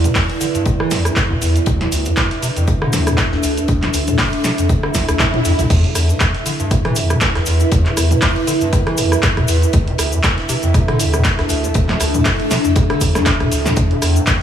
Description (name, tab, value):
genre	acid house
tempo	119 BPM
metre	4/4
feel	swing 55% on 16ths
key	E minor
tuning	A4 = 437 Hz
part	dark analog pad	sustained chords	0.0-5.7, 13.8-14.4 s	D5 to G5	-39 LUFS	left 1 dB	none
part	overdriven acid bass	riff	0.0-14.3 s	C2 to E3	-18 LUFS	equal	analog chorus, digital delay
part	punchy analog drum machine	drums	0.0-14.4 s	crash cymbal, handclaps, hi-hat, rim click, snare drum, toms	-19 LUFS	equal	none
part	cabasa	percussion	0.0-14.4 s	none	-29 LUFS	left 6 dB	none
part	granular cloud pad	texture	0.0-14.4 s	D4 to E5	-21 LUFS	equal	built-in reverb, sidechain pumping
part	modern studio drum kit	drums	0.1-14.4 s	hi-hat, snare drum	-30 LUFS	left 4 dB	none
part	electronic kick drum	drums	0.2-14.4 s	none	-18 LUFS	equal	none
part	swell	sound effects	4.9-5.7 s	none	-24 LUFS	right 2 dB	none
room	light reverb, small room reverb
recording	none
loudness	-13 LUFS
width	side -9 dB against mid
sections	0.0-5.7 A section; 5.7-14.4 B section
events	swell 4.9-5.7; drop 5.7-14.4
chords	0.0 Em7; 1.7 D5; 5.7 Em7; 9.7 Dm; 13.8 Em7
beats	0.15 0.66 1.16 | 1.67 2.17 2.68 3.18 | 3.68 4.19 4.69 5.20 | 5.70 6.21 6.71 7.21 | 7.72 8.22 8.73 9.23 | 9.73 10.24 10.74 11.25 | 11.75 12.26 12.76 13.26 | 13.77 14.27